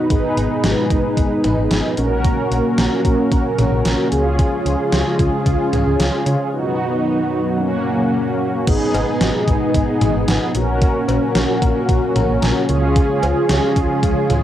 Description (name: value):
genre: synth-pop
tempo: 112 BPM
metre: 4/4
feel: straight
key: G# dorian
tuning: A4 = 440 Hz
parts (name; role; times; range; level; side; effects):
- mellow synth brass; accompaniment; 0.0-14.4 s; A#3 to B4; -20 LUFS; right 1 dB; chorus, cassette tape, plate reverb
- string machine, cellos; sustained chords; 0.0-14.4 s; C#3 to G#4; -20 LUFS; left 1 dB; ensemble chorus, cassette tape, plate reverb
- solid FM bass; bass; 0.1-14.4 s; G#1 to C#3; -21 LUFS; equal; none
- gated 80s digital drum machine; drums; 0.1-14.4 s; cowbell, crash cymbal, hi-hat, kick drum, snare drum, toms; -20 LUFS; equal; gated reverb, gated reverb snare, overdrive, cassette tape
room: moderate small room reverb, RT60 0.5 s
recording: home recording on cassette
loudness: -15 LUFS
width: side -12 dB against mid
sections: 0.0-8.7 A section; 8.7-14.4 B section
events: none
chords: 0.1 G#m; 2.0 F#/A#; 4.1 C#; 6.5 B; 7.6 F#; 8.7 G#m; 10.6 F#/A#; 12.7 C#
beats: | 0.10 0.64 1.18 1.71 | 2.25 2.78 3.32 3.85 | 4.39 4.92 5.46 6.00 | 6.53 7.07 7.60 8.14 | 8.68 9.21 9.75 10.28 | 10.82 11.35 11.89 12.43 | 12.96 13.50 14.03